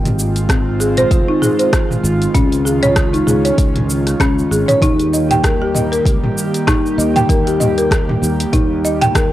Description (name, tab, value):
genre	organic downtempo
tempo	97 BPM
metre	4/4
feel	swing 56% on 16ths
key	Eb mixolydian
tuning	A4 = 440 Hz
part	airy breathy pad	sustained chords	0.0-9.3 s	Eb3 to G4	-20 LUFS	right 1 dB	chorus, sidechain pumping
part	sustaining fretless electric bass	bass	0.0-9.3 s	F1 to Eb2	-20 LUFS	equal	lush chorus, sidechain pumping
part	deep house drum kit	drums	0.1-9.3 s	cabasa, hi-hat, rim click, toms	-20 LUFS	equal	none
part	folk marimba with medium mallets	arpeggios	0.5-9.2 s	C4 to G5	-17 LUFS	equal	analog delay
part	electronic kick drum	drums	0.5-9.3 s	none	-16 LUFS	equal	none
room	light reverb, digital ambience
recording	dry, gritty hardware recording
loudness	-12 LUFS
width	side -14 dB against mid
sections	0.0-9.3 A section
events	none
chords	0.0 Ab6; 2.3 Dbadd9; 4.8 Eb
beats	0.49 1.11 1.73 | 2.35 2.96 3.58 4.20 | 4.82 5.44 6.06 6.67 | 7.29 7.91 8.53 9.15